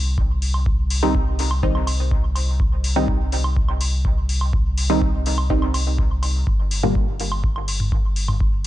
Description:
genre	dub techno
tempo	124 BPM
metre	4/4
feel	straight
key	C minor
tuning	A4 = 440 Hz
part	warm sub bass	bass	0.0-8.7 s	G1 to C2	-22 LUFS	equal	sidechain pumping
part	electronic kick drum	drums	0.2-8.5 s	none	-22 LUFS	equal	none
part	electronic hi-hat	drums	0.4-8.7 s	none	-28 LUFS	left 3 dB	none
part	electronic woodblock and toms	percussion	0.5-8.4 s	none	-30 LUFS	right 1 dB	sidechain pumping on perc, sidechain pumping on toms, dub echo
part	filtered dub chord stab	stabs	1.0-7.0 s	Bb2 to Eb4	-24 LUFS	right 1 dB	chorus, phaser, sidechain pumping, dub echo
room	little or no reverb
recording	dark, warm production, nothing above 10.4 kHz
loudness	-18 LUFS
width	side -14 dB against mid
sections	0.0-8.7 A section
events	none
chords	0.0 Cm; 6.5 Gm

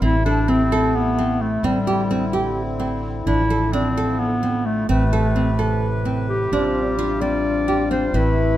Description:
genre	contemporary instrumental, chamber music in an uneven meter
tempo	258 BPM (eighths)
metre	7/8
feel	straight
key	unclear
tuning	A4 = 435 Hz
part	mellow clarinet	melody	0.0-8.6 s	G3 to D5	-22 LUFS	left 1 dB	none
part	hand-pumped harmonium	sustained chords	0.0-8.6 s	A2 to B4	-27 LUFS	left 2 dB	none
part	nylon-string guitar	arpeggios	0.0-8.4 s	C4 to A4	-24 LUFS	right 2 dB	none
part	upright bass	bass	0.0-8.6 s	A1	-23 LUFS	right 1 dB	none
part	warm French horn	second line	6.5-8.6 s	C4 to E4	-23 LUFS	left 4 dB	none
room	light reverb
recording	close, detailed microphones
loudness	-18 LUFS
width	side -13 dB against mid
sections	0.0-6.5 A section; 6.5-8.6 B section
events	none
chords	0.0 Am; 1.6 Cadd9/A; 3.3 Dmadd9/A; 4.9 Amadd9; 6.5 G7sus4/A

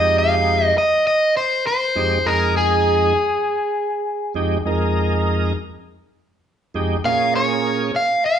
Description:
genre	blues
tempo	100 BPM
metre	4/4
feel	swing 54% on 16ths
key	F minor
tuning	A4 = 439 Hz
part	crunchy overdriven guitar	melody	0.0-8.4 s	Ab4 to F5	-17 LUFS	equal	none
part	bright tonewheel organ	accompaniment	0.0-7.9 s	F2 to Bb4	-20 LUFS	right 1 dB	overdrive, chorus vibrato, slow rotary speaker
room	wet large studio reverb, RT60 1.1 s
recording	band playing live in one room, nothing above 10.9 kHz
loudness	-16 LUFS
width	side -8 dB against mid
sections	0.0-8.4 A section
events	none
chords	0.0 Fm7; 7.0 Bbm7

